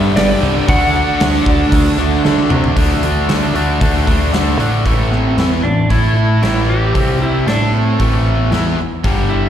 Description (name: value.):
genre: classic rock.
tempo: 115 BPM.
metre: 4/4.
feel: straight.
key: A minor.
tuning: A4 = 440 Hz.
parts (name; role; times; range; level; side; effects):
clean lap steel guitar; melody; 0.0-9.5 s; C4 to F#5; -20 LUFS; right 1 dB; slapback echo.
octave-fuzz lead guitar; second line; 0.0-2.2 s; B3 to D4; -26 LUFS; right 5 dB; distortion.
warm concert grand piano; accompaniment; 0.0-2.7 s; D4 to E5; -25 LUFS; right 3 dB; slapback echo.
biting overdriven guitar; riff; 0.0-9.5 s; G2 to A4; -19 LUFS; left 9 dB; slapback echo.
overdriven electric guitar; riff; 0.0-9.5 s; G2 to A4; -21 LUFS; right 13 dB; slapback echo.
growling picked electric bass; bass; 0.0-9.5 s; G1 to D3; -16 LUFS; equal; overdrive.
gated 80s drum kit; drums; 0.2-9.2 s; hi-hat, kick drum, snare drum, toms; -18 LUFS; equal; none.
room: small room ambience.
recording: live gig heard through the venue's PA, recital hall reverb.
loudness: -12 LUFS.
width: side -10 dB against mid.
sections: 0.0-2.8 A section; 2.8-4.9 B section; 4.9-9.5 C section.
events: drum fill 2.2-2.8.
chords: 0.0 G; 0.7 D; 2.8 D5; 4.9 Am; 7.0 C5; 7.5 Am.